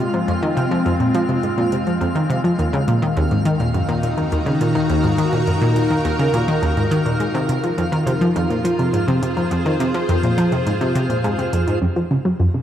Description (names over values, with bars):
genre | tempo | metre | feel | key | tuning
ambient, sequencer-driven space music | 104 BPM | 4/4 | straight | F phrygian | A4 = 440 Hz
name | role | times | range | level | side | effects
evolving wavetable pad | sustained chords | 0.0-12.6 s | Eb3 to Bb5 | -22 LUFS | equal | ensemble chorus, built-in reverb
analog pluck | riff | 0.0-12.6 s | Eb2 to Gb3 | -18 LUFS | equal | chorus, tape echo
analog drone | bass | 0.2-11.8 s | Eb2 to F2 | -31 LUFS | left 1 dB | none
twinkling granular texture | texture | 0.0-12.6 s | Eb5 to F5 | -31 LUFS | left 1 dB | built-in reverb
electronic hi-hat and woodblock | percussion | 0.1-11.8 s | none | -38 LUFS | equal | tape echo
room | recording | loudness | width
moderate plate reverb, RT60 2.9 s | dark, warm production | -16 LUFS | side -10 dB against mid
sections
0.0-11.8 A section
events
fade-in on drum 0.0-11.8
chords
0.0 Fm; 2.6 Ebm; 7.2 Fm; 11.8 Gb